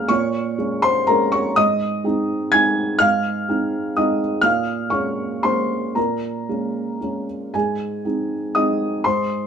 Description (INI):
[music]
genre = neoclassical minimalist piano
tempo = 112-127 BPM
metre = 3/4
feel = rubato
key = unclear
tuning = A4 = 440 Hz
[part]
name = felt-muted upright piano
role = solo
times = 0.0-9.5 s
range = Ab2 to Ab6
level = -18 LUFS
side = equal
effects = none
[sound]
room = moderate studio reverb, RT60 0.6 s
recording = none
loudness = -18 LUFS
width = side -7 dB against mid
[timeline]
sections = 0.0-7.5 A section; 7.5-9.5 B section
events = none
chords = 0.0 Bbm7; 1.6 Ab; 4.4 Bbm7; 7.5 Ab